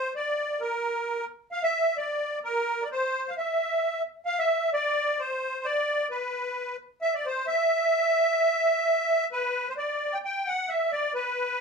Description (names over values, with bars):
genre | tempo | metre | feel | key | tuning
alpine folk | 130 BPM | 3/4 | straight | unclear | A4 = 440 Hz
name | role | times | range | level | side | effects
musette accordion | solo | 0.0-11.6 s | Bb4 to G5 | -24 LUFS | equal | none
room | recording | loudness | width
wet small room ambience, RT60 0.5 s | heard from further back in the room | -24 LUFS | side -5 dB against mid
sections
0.0-9.8 A section; 9.8-11.6 B section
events
none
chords
none